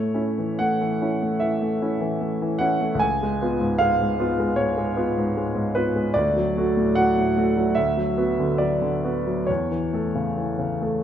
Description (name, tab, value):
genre	classical, romantic character piece for solo piano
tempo	62-78 BPM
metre	4/4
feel	rubato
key	A major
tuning	A4 = 440 Hz
part	clear grand piano	solo	0.0-11.0 s	C#2 to G#5	-20 LUFS	equal	none
room	wet recital hall reverb, RT60 1.7 s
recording	minimal, uncompressed stereo recording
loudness	-20 LUFS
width	side -9 dB against mid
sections	0.0-11.0 A section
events	none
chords	0.0 A; 3.0 C#7; 6.1 D; 7.8 Bm/D; 9.5 A/E